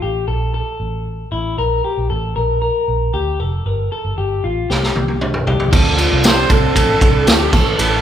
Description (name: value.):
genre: jangly indie pop.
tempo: 116 BPM.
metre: 4/4.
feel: straight.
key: D minor.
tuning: A4 = 441 Hz.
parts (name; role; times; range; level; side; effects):
electric guitar through a small old amp; arpeggios; 0.0-8.0 s; E4 to Bb4; -21 LUFS; left 4 dB; none.
vintage muted fingered electric bass; bass; 0.0-8.0 s; F1 to D2; -20 LUFS; right 1 dB; none.
raw garage drum kit; drums; 4.7-7.9 s; crash cymbal, kick drum, ride cymbal, snare drum, toms; -14 LUFS; right 1 dB; none.
crunchy overdriven guitar; accompaniment; 5.7-8.0 s; A2 to A4; -20 LUFS; right 6 dB; phaser.
tambourine; percussion; 5.7-7.9 s; none; -33 LUFS; left 4 dB; none.
warm viola; melody; 6.3-8.0 s; E4 to C5; -19 LUFS; equal; none.
room: moderate recital hall reverb, RT60 1.6 s.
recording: recorded in a church or concert hall.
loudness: -14 LUFS.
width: side -10 dB against mid.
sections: 0.0-5.7 A section; 5.7-8.0 B section.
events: drum fill 4.7-5.7.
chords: 0.0 A5; 1.6 N.C.; 3.7 Gmadd9; 4.7 C5; 5.7 Dm7.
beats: 0.02 0.54 1.06 | 1.58 2.10 2.62 3.14 | 3.66 4.17 4.69 5.21 | 5.73 6.24 6.76 7.27 | 7.79.